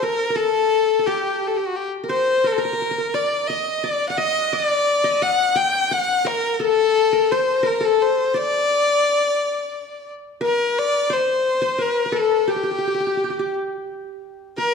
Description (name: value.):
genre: Arabic maqam ensemble.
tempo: 58 BPM (dotted quarters).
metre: 6/8.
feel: straight.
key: D maqam hijaz, G maqam rast from 10.4 s.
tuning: A4 = 438 Hz.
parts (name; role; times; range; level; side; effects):
clear violin; melody; 0.0-14.7 s; F#4 to G5; -18 LUFS; left 3 dB; none.
qanun; second line; 0.0-14.7 s; G4 to G5; -26 LUFS; right 1 dB; none.
room: moderate concert hall reverb, RT60 1.9 s.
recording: studio ambience.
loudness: -18 LUFS.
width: side -5 dB against mid.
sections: 0.0-10.4 A section; 10.4-14.7 B section.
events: none.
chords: none.